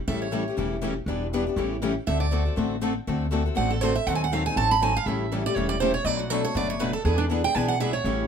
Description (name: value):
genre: acoustic string swing (jazz manouche)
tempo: 241 BPM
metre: 4/4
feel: swing 57% on 8ths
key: A mixolydian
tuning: A4 = 440 Hz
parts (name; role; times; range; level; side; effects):
- picked steel-string acoustic guitar; second line; 0.1-8.3 s; D4 to B5; -26 LUFS; right 6 dB; none
- picked steel-string acoustic guitar; accompaniment; 0.1-8.2 s; B2 to A4; -28 LUFS; left 6 dB; none
- picked steel-string acoustic guitar; accompaniment; 0.1-8.2 s; B2 to B4; -33 LUFS; right 6 dB; none
- upright bass; bass; 0.1-8.3 s; E1 to E2; -28 LUFS; equal; none
room: moderate studio ambience, RT60 0.4 s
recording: none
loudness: -23 LUFS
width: side -7 dB against mid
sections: 0.0-8.3 A section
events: steel-string acoustic guitar solo 0.0-8.3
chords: 0.0 A7; 1.1 Em7; 1.6 A7; 2.1 D7; 4.1 D#dim7; 5.1 A7; 6.1 Bm7; 7.1 E7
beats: | 0.07 0.32 0.57 0.82 | 1.07 1.32 1.57 1.82 | 2.07 2.32 2.57 2.82 | 3.07 3.32 3.57 3.82 | 4.07 4.32 4.56 4.81 | 5.06 5.31 5.56 5.81 | 6.06 6.31 6.56 6.81 | 7.05 7.30 7.55 7.80 | 8.05